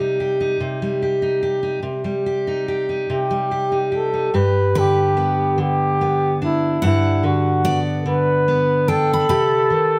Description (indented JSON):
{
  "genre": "acoustic folk-pop ballad",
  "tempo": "48 BPM (dotted quarters)",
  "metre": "6/8",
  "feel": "straight",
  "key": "G major",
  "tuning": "A4 = 442 Hz",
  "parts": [
    { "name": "fingerpicked steel-string acoustic guitar", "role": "accompaniment", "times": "0.0-10.0 s", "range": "G2 to G4", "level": "-22 LUFS", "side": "equal", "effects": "none" },
    { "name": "breathy flugelhorn", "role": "melody", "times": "3.1-10.0 s", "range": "E4 to B4", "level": "-21 LUFS", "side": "equal", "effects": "none" },
    { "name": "picked steel-string acoustic guitar", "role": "arpeggios", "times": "4.8-10.0 s", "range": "B4 to B5", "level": "-29 LUFS", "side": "equal", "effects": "none" }
  ],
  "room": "little or no reverb",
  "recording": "close, detailed microphones",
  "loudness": "-19 LUFS",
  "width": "mono",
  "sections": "0.0-4.3 A section; 4.3-10.0 B section",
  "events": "none",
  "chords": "0.0 Cm; 4.3 G; 9.3 Cm"
}